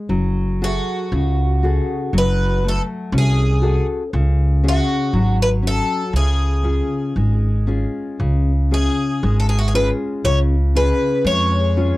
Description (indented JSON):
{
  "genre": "fado-style ballad",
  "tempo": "59 BPM",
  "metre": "2/4",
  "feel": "rubato",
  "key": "F# harmonic minor",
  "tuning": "A4 = 439 Hz",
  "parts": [
    { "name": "nylon-string guitar", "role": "accompaniment", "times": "0.0-12.0 s", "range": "C#3 to A4", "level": "-22 LUFS", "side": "left 2 dB", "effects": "none" },
    { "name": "upright bass", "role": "bass", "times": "0.1-11.9 s", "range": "F#1 to E#2", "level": "-17 LUFS", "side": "equal", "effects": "none" },
    { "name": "picked twelve-string acoustic guitar", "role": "melody", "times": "0.6-12.0 s", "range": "F#4 to C#5", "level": "-22 LUFS", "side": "equal", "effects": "none" }
  ],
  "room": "little or no reverb",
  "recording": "dry, gritty hardware recording, transformer saturation",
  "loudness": "-16 LUFS",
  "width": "side -18 dB against mid",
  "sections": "0.1-12.0 A section",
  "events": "none",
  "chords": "0.1 F#madd9; 4.1 C#sus4; 6.1 C#"
}